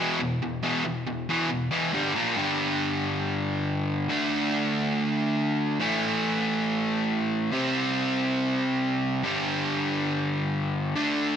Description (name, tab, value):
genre	rock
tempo	140 BPM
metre	4/4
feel	straight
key	unclear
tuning	A4 = 440 Hz
part	overdriven electric guitar	solo	0.0-11.4 s	E2 to D4	-24 LUFS	equal	none
room	moderate lush hall reverb, RT60 2.3 s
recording	bright 1980s-style digital production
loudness	-24 LUFS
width	side -8 dB against mid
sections	0.0-2.4 A section; 2.4-11.4 B section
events	none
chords	0.0 E5; 1.9 G5; 2.2 A#5; 2.4 G5; 4.1 D5; 5.8 A5; 7.5 C5; 9.2 G5